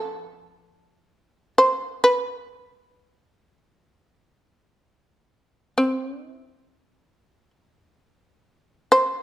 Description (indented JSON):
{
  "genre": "japanese traditional, Japanese chamber music",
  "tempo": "62-69 BPM",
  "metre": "4/4",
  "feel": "rubato",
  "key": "unclear",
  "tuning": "A4 = 439 Hz",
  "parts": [
    { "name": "shamisen", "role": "melody", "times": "0.0-9.2 s", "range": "E4 to C5", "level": "-18 LUFS", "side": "equal", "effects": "none" },
    { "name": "koto", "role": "accompaniment", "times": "0.0-1.1 s", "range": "F3", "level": "-58 LUFS", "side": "left 8 dB", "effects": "none" }
  ],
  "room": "light reverb",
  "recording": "close, detailed microphones",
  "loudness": "-20 LUFS",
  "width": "side -14 dB against mid",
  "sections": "0.0-2.1 A section; 2.1-9.2 B section",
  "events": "none",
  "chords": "none"
}